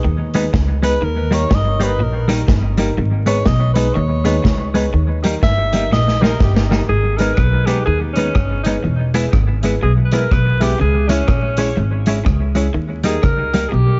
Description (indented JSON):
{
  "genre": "ska",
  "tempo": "123 BPM",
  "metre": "4/4",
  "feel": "swing 60% on 8ths",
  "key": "G# harmonic minor",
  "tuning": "A4 = 440 Hz",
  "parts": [
    { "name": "electric guitar at the edge of break-up", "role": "riff", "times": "0.0-13.9 s", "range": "E2 to D#3", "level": "-27 LUFS", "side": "equal", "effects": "none" },
    { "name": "upright bass", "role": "bass", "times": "0.0-14.0 s", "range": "E1 to D#2", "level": "-20 LUFS", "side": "equal", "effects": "none" },
    { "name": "dark upright piano", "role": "stabs", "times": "0.1-13.8 s", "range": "D#4 to C#5", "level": "-28 LUFS", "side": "equal", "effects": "tape echo" },
    { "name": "clean electric guitar", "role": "accompaniment", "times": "0.3-13.7 s", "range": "G3 to E4", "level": "-24 LUFS", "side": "equal", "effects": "tape echo" },
    { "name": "vintage drum kit", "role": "drums", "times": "0.3-13.6 s", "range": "hi-hat, kick drum, rim click, snare drum", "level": "-21 LUFS", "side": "equal", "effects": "none" },
    { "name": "breathy alto saxophone", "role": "melody", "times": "0.8-6.7 s", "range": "G4 to E5", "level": "-25 LUFS", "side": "equal", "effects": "tape echo" },
    { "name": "breathy alto saxophone", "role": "melody", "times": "6.9-14.0 s", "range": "C#4 to C#5", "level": "-24 LUFS", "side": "equal", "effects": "tape echo" }
  ],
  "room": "small room ambience",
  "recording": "dark, warm production, vinyl crackle, nothing above 7.5 kHz",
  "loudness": "-16 LUFS",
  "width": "mono",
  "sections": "0.0-6.9 A section; 6.9-14.0 A section",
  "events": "alto saxophone solo 0.0-6.9, 6.9-14.0; drum fill 5.9-6.9",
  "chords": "0.0 G#m; 1.0 D#; 3.0 G#m; 4.9 D#; 6.9 G#m; 8.8 E; 10.8 C#m; 12.8 D#",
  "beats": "0.04 0.54 | 1.02 1.51 2.00 2.49 | 2.98 3.47 3.96 4.45 | 4.94 5.42 5.91 6.40 | 6.89 7.38 7.87 8.36 | 8.85 9.34 9.82 10.31 | 10.80 11.29 11.78 12.27 | 12.76 13.25 13.73"
}